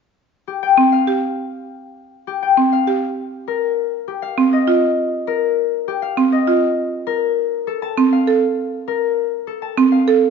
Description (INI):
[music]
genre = classical, minimalist pattern music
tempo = 100 BPM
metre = 3/4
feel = straight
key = C dorian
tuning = A4 = 440 Hz
[part]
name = concert harp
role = melody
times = 0.5-10.3 s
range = G4 to A5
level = -19 LUFS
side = left 9 dB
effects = none
[part]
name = buzzing marimba with medium hard mallets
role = arpeggios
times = 0.8-10.3 s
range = C4 to A4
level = -16 LUFS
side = right 5 dB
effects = none
[sound]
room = wet recital hall reverb, RT60 1.4 s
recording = nothing above 7.5 kHz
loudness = -15 LUFS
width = side -6 dB against mid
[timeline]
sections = 0.0-10.3 A section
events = none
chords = 0.0 Csus4; 3.0 Cm7; 6.6 Bb5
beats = 0.03 0.62 | 1.23 1.82 2.42 | 3.02 3.62 4.22 | 4.83 5.42 6.03 | 6.62 7.22 7.83 | 8.43 9.03 9.62 | 10.22